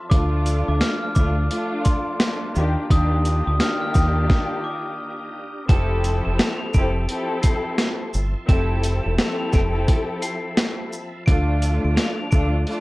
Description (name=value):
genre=hip hop, boom-bap hip-hop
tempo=86 BPM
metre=4/4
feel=swing 61% on 16ths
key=unclear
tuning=A4 = 440 Hz
part: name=bright tonewheel organ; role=sustained chords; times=0.0-12.8 s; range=F3 to Eb6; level=-36 LUFS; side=equal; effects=chorus vibrato, slow rotary speaker, high-pass filter, low-pass filter
part: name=glockenspiel with hard plastic mallets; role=melody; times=0.1-12.6 s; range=C6 to F7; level=-30 LUFS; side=left 1 dB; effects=high-pass filter, low-pass filter
part: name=dark studio string section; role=accompaniment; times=0.1-12.8 s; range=Eb3 to A4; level=-26 LUFS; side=left 1 dB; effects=cassette tape, high-pass filter, low-pass filter
part: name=deep dub fingered electric bass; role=bass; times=0.1-12.6 s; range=E1 to Eb2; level=-21 LUFS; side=equal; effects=none
part: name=boom bap sampler-style drum kit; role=drums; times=0.1-12.8 s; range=hi-hat, kick drum, shaker, snare drum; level=-20 LUFS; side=equal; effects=none
room=little or no reverb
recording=worn, warbling old tape, cassette tape, warbly pitch drift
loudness=-19 LUFS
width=side -20 dB against mid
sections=0.0-5.7 A section; 5.7-12.8 B section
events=stop 4.3-5.7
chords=0.1 Dm; 2.6 Ebmaj7; 5.7 Fmaj7; 11.3 Dm